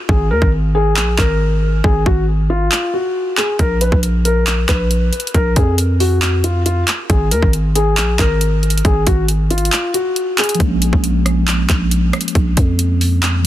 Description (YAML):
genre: hip hop, trap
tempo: 137 BPM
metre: 4/4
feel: half-time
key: Bb phrygian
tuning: A4 = 440 Hz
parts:
  - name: felt-muted upright piano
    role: melody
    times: 0.1-10.6 s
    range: F4 to Cb5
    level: -19 LUFS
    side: left 2 dB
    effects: low-pass filter, digital delay
  - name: growling 808-style bass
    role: bass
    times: 0.1-13.5 s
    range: Ab1 to F2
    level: -16 LUFS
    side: equal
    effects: none
  - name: trap drum kit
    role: drums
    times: 0.1-13.5 s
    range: handclaps, hi-hat, kick drum, rim click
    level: -17 LUFS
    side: equal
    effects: overdrive
  - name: mellow tine electric piano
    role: accompaniment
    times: 10.5-13.5 s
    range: F3 to Db4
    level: -21 LUFS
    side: equal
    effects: medium stereo tremolo, low-pass filter
room: little or no reverb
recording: dense, heavily limited modern master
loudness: -13 LUFS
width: side -13 dB against mid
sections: 0.0-13.5 A section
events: break 0.0-3.6; kick muted 9.7-10.6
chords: 0.1 Ab5; 3.6 Bb5; 7.1 Ab5; 10.6 Bbm7